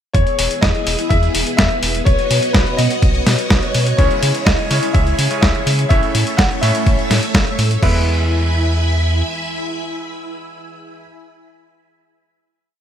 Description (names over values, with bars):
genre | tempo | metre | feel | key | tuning
italo disco | 125 BPM | 4/4 | straight | E major | A4 = 440 Hz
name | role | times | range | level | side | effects
warm grand piano | melody | 0.1-11.0 s | B4 to F#5 | -22 LUFS | left 2 dB | wide subtle chorus
string machine, full ensemble | sustained chords | 0.1-11.0 s | A3 to B5 | -22 LUFS | equal | phaser, ensemble chorus
round analog bass | bass | 0.1-9.2 s | E1 to C#3 | -18 LUFS | equal | tube saturation
dusty soul sampler-style drum kit | drums | 0.1-7.9 s | crash cymbal, hi-hat, snare drum | -19 LUFS | equal | overdrive
electronic kick drum | drums | 0.1-7.9 s | none | -16 LUFS | equal | overdrive
bright electric grand piano | stabs | 4.0-11.0 s | A2 to C#5 | -25 LUFS | right 3 dB | digital delay
room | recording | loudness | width
light reverb, digital ambience | bright 1980s-style digital production | -13 LUFS | side -9 dB against mid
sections
0.1-7.8 chorus; 7.8-11.7 final chord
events
none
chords
0.1 E; 2.1 Badd9; 4.0 C#m; 5.9 A; 7.8 E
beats
| 0.15 0.63 1.11 1.59 | 2.07 2.55 3.03 3.51 | 3.99 4.47 4.95 5.43 | 5.91 6.39 6.87 7.35 | 7.83 8.31 8.79 9.27 | 9.75 10.23 10.71